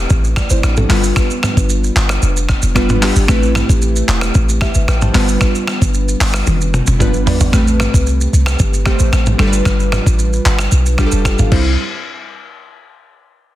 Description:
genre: afrobeats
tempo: 113 BPM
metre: 4/4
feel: straight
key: unclear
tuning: A4 = 440 Hz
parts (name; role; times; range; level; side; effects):
- glassy digital keys; accompaniment; 0.0-11.8 s; G3 to A5; -19 LUFS; equal; chorus
- clean 808-style bass; bass; 0.0-11.8 s; E1 to C2; -14 LUFS; equal; none
- dusty soul sampler-style drum kit; drums; 0.1-11.6 s; crash cymbal, finger snaps, handclaps, hi-hat, kick drum, rim click, shaker, toms; -16 LUFS; equal; soft clipping on snare
room: little or no reverb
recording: dense, heavily limited modern master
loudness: -11 LUFS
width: side -14 dB against mid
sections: 0.0-7.5 A section; 7.5-11.8 B section; 11.8-13.6 C section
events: drum fill 6.5-7.5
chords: 0.0 Am9; 0.9 G7; 3.3 Am9; 5.1 G7; 7.5 Am9; 9.4 G7; 11.5 C; 11.8 N.C.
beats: 0.10 0.63 | 1.17 1.70 2.23 2.76 | 3.29 3.82 4.35 4.88 | 5.41 5.94 6.47 7.01 | 7.54 8.07 8.60 9.13 | 9.66 10.19 10.72 11.25 | 11.79

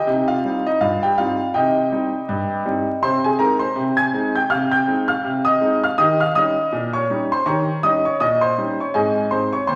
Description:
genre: ragtime piano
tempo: 81 BPM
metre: 2/4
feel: swing 57% on 16ths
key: Ab major from 3.0 s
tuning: A4 = 445 Hz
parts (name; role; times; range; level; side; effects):
- warm grand piano; solo; 0.0-9.8 s; Eb2 to Ab6; -19 LUFS; equal; none
room: wet large studio reverb, RT60 1.4 s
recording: vinyl crackle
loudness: -19 LUFS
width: mono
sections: 0.0-9.8 A section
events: none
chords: 0.1 Cm; 3.0 Ab/C; 6.0 Eb7; 8.9 Ab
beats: | 0.08 0.81 | 1.55 2.29 | 3.03 3.77 | 4.51 5.25 | 5.98 6.72 | 7.46 8.20 | 8.94 9.68

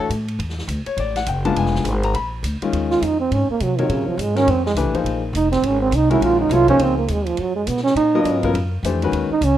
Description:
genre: modal jazz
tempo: 206 BPM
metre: 4/4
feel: swing 61% on 8ths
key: Eb minor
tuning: A4 = 436 Hz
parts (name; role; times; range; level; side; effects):
- warm grand piano; accompaniment; 0.0-9.3 s; C3 to B5; -22 LUFS; left 5 dB; none
- upright bass; bass; 0.1-9.6 s; E#1 to C3; -22 LUFS; equal; none
- vintage drum kit; drums; 0.1-9.5 s; hi-hat, kick drum, ride cymbal, snare drum; -33 LUFS; right 1 dB; none
- mellow trombone; second line; 2.9-9.6 s; Db3 to F4; -18 LUFS; right 4 dB; none
room: light reverb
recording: rough home demo mix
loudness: -17 LUFS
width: side -12 dB against mid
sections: 0.0-2.7 A section; 2.7-9.6 A section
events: trombone solo 2.7-9.6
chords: 0.0 Asus4; 1.6 A#7b9; 2.7 Eb13sus4; 7.4 Db13sus4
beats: 0.10 | 0.40 0.69 0.98 1.27 | 1.56 1.85 2.14 2.44 | 2.73 3.02 3.31 3.60 | 3.89 4.18 4.47 4.76 | 5.05 5.35 5.64 5.93 | 6.22 6.51 6.80 7.09 | 7.38 7.67 7.96 8.26 | 8.55 8.84 9.13 9.42

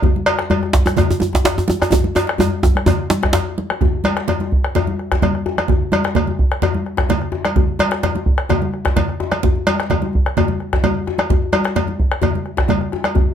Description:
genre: west african traditional, West African drum ensemble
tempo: 128 BPM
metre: 4/4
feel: straight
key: none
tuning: none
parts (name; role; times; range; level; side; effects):
- bombo; percussion; 0.0-13.3 s; none; -18 LUFS; equal; none
- congas; percussion; 0.0-13.3 s; none; -21 LUFS; right 3 dB; none
- djembe; percussion; 0.0-13.3 s; none; -21 LUFS; left 6 dB; none
- cowbell; percussion; 0.3-13.2 s; none; -22 LUFS; right 1 dB; none
- djembe; percussion; 0.7-3.4 s; none; -18 LUFS; right 2 dB; none
room: moderate studio reverb, RT60 0.6 s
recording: none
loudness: -15 LUFS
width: side -8 dB against mid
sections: 0.0-3.8 A section; 3.8-13.3 B section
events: drum fill 1.9-3.8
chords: none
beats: | 0.04 0.51 0.98 1.45 | 1.92 2.40 2.87 3.34 | 3.81 4.28 4.75 5.22 | 5.69 6.16 6.62 7.09 | 7.56 8.03 8.50 8.96 | 9.43 9.90 10.37 10.83 | 11.30 11.76 12.23 12.69 | 13.16

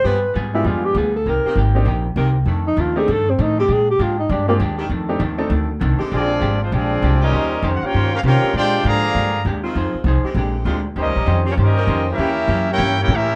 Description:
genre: jazz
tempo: 198 BPM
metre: 4/4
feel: swing 61% on 8ths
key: unclear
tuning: A4 = 441 Hz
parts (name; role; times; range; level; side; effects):
- breathy alto saxophone; melody; 0.0-4.6 s; Bb3 to B4; -21 LUFS; equal; none
- vintage hollow-body jazz guitar; accompaniment; 0.0-13.3 s; F2 to C5; -28 LUFS; equal; none
- mellow saxophone section; sustained chords; 0.0-12.3 s; Db3 to C5; -30 LUFS; equal; none
- upright bass; bass; 0.0-13.4 s; Ab1 to C3; -22 LUFS; equal; none
- warm baby grand piano; accompaniment; 0.5-5.5 s; Ab3 to A4; -26 LUFS; equal; none
- clear trumpet section; melody; 6.1-13.4 s; Ab3 to Bb5; -23 LUFS; equal; none
- clear trombone section; second line; 6.1-13.4 s; D3 to Bb4; -26 LUFS; equal; none
room: light reverb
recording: none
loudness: -18 LUFS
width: mono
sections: 0.0-6.1 A section; 6.1-13.4 B section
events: alto saxophone solo 0.0-6.1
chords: 0.1 G7b9; 1.3 Cm7; 2.5 F13; 3.7 Bb13; 4.9 F13; 6.1 Bb13; 7.3 Eb13; 8.5 Bb13; 9.8 Fm7; 10.4 Bb13; 11.0 Eb13; 12.2 Edim7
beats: | 0.05 0.35 0.66 0.96 | 1.26 1.56 1.87 2.17 | 2.47 2.78 3.08 3.38 | 3.69 3.99 4.29 4.60 | 4.90 5.20 5.51 5.81 | 6.11 6.42 6.72 7.02 | 7.33 7.63 7.93 8.24 | 8.54 8.84 9.15 9.45 | 9.75 10.06 10.36 10.66 | 10.96 11.27 11.57 11.87 | 12.18 12.48 12.78 13.08

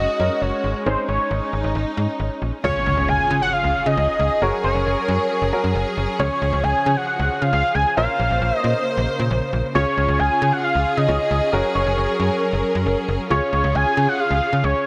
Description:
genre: synth-pop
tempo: 135 BPM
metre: 4/4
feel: straight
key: Db major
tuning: A4 = 440 Hz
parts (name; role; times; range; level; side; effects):
- fat analog lead; melody; 0.0-14.9 s; C5 to Ab5; -24 LUFS; equal; chorus, digital delay
- clear concert grand piano; accompaniment; 0.0-14.9 s; F3 to Db5; -31 LUFS; equal; none
- warm studio string section; sustained chords; 0.0-14.9 s; Db3 to C5; -27 LUFS; equal; none
- slap-like FM bass; bass; 0.0-14.7 s; Gb1 to Db3; -24 LUFS; equal; none
- impact; sound effects; 2.6-4.4 s; none; -34 LUFS; equal; none
room: light reverb, small room ambience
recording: none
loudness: -20 LUFS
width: mono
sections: 0.0-2.6 A section; 2.6-14.9 B section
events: impact 2.6-4.4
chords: 0.0 Gbsus2; 0.9 Absus4; 2.6 Db; 4.4 Gbadd9; 6.2 Db; 8.0 Bbmadd9; 9.7 Db; 11.5 Gbadd9; 13.3 Db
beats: 0.42 | 0.86 1.30 1.75 2.19 | 2.64 3.08 3.53 3.97 | 4.42 4.86 5.30 5.75 | 6.19 6.64 7.08 7.53 | 7.97 8.42 8.86 9.30 | 9.75 10.19 10.64 11.08 | 11.53 11.97 12.42 12.86 | 13.30 13.75 14.19 14.64

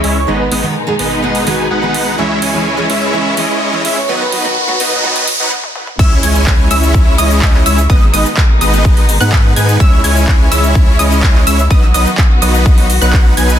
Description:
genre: EDM, festival progressive house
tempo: 126 BPM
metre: 4/4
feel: straight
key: C# minor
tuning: A4 = 439 Hz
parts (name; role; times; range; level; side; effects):
- picked steel-string acoustic guitar; accompaniment; 0.0-5.3 s; D#3 to G#4; -21 LUFS; right 1 dB; sidechain pumping, digital delay
- warm studio string section; sustained chords; 0.0-13.6 s; B2 to F#4; -22 LUFS; left 2 dB; sidechain pumping
- supersaw chords; riff; 0.0-13.6 s; F#3 to G#5; -16 LUFS; equal; sidechain pumping, low-pass filter, digital delay
- saturated sub bass; bass; 0.0-13.6 s; G#1 to G#2; -16 LUFS; equal; sidechain pumping
- big-room dance drum kit; drums; 0.0-13.6 s; crash cymbal, handclaps, hi-hat, shaker, toms; -20 LUFS; right 1 dB; high-pass filter on hats, small room ambience, high-pass filter on toms, high-pass filter on cymbals, high-pass filter on perc, high-pass filter on snare
- riser and impact; sound effects; 1.3-7.9 s; none; -21 LUFS; right 1 dB; none
- breathy flute-like synth lead; melody; 0.2-4.9 s; F#4 to C#5; -22 LUFS; right 1 dB; tremolo, lush chorus, digital delay
- wide unison pluck; arpeggios; 6.0-13.6 s; D#6 to G#6; -19 LUFS; right 1 dB; sidechain pumping, digital delay
- electronic kick drum; drums; 6.0-13.2 s; none; -9 LUFS; equal; small room ambience
room: digital ambience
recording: dense, heavily limited modern master, high-pass filter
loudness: -9 LUFS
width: side -10 dB against mid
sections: 0.0-6.0 A section; 6.0-13.6 B section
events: build-up 0.0-6.0; filter sweep on supersaw synth 0.0-6.0; filter sweep 0.0-6.0; riser 1.3-5.5; break 5.5-6.0; drum fill 5.6-6.0; drop 6.0-13.6; impact 6.0-7.9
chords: 0.3 G#m; 2.2 C#m; 4.1 B; 6.0 C#m; 7.9 G#m; 9.8 C#m; 11.7 B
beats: | 0.28 0.75 1.23 1.71 | 2.18 2.66 3.13 3.61 | 4.09 4.56 5.04 5.52 | 5.99 6.47 6.94 7.42 | 7.90 8.37 8.85 9.32 | 9.80 10.28 10.75 11.23 | 11.71 12.18 12.66 13.13

